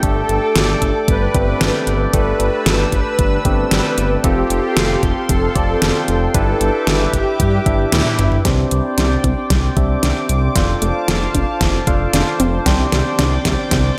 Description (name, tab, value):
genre	synthwave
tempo	114 BPM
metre	4/4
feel	straight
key	unclear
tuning	A4 = 438 Hz
part	soft supersaw	melody	0.0-8.3 s	E4 to B4	-24 LUFS	equal	tape echo
part	chorused pulse-width pad	sustained chords	0.0-14.0 s	A4 to E6	-26 LUFS	equal	sidechain pumping
part	barky tine electric piano	stabs	0.0-13.9 s	A3 to F5	-25 LUFS	equal	overdrive, low-pass filter, delay
part	dark detuned saw bass	bass	0.0-13.9 s	F1 to G2	-21 LUFS	equal	none
part	electronic kick drum	drums	0.0-13.8 s	none	-22 LUFS	equal	overdrive
part	pop drum kit	drums	0.0-13.8 s	hi-hat, snare drum, toms	-22 LUFS	equal	overdrive, gated reverb
part	unison pluck	arpeggios	8.5-13.9 s	G3 to G4	-27 LUFS	equal	none
room	light reverb, digital ambience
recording	none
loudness	-16 LUFS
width	mono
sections	0.0-8.4 A section; 8.4-14.0 B section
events	drum fill 7.7-8.4, 8.4-14.0; kick drops out 7.9-8.4; band accent 7.9; filter sweep on tine electric piano 8.4-14.0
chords	0.0 Gsus2; 4.2 Fadd9; 6.3 G6; 8.4 Csus2; 10.6 F6; 12.7 Csus2